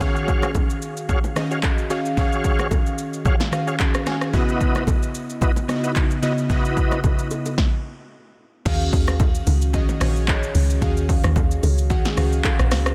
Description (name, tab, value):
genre	amapiano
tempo	111 BPM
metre	4/4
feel	swing 55% on 16ths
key	Eb minor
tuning	A4 = 440 Hz
part	glassy digital keys	accompaniment	0.0-12.9 s	Db3 to Ab5	-28 LUFS	equal	chorus
part	bright tonewheel organ	stabs	0.0-7.0 s	Fb4 to F5	-30 LUFS	equal	chorus vibrato, fast rotary speaker, delay
part	deep house drum kit	drums	0.0-12.9 s	crash cymbal, handclaps, hi-hat, kick drum, rim click, shaker, snare drum	-24 LUFS	equal	soft clipping on snare
part	congas and bongos	percussion	0.0-12.6 s	none	-32 LUFS	equal	none
part	deep log drum bass	bass	8.7-12.9 s	Bb1 to Eb2	-22 LUFS	equal	none
room	little or no reverb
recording	dense, heavily limited modern master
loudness	-21 LUFS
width	mono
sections	0.0-8.7 A section; 8.7-12.9 B section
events	stop 7.6-8.7; drop 8.7-12.9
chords	0.0 Ebm11; 4.3 Dbm11; 8.7 Ebm11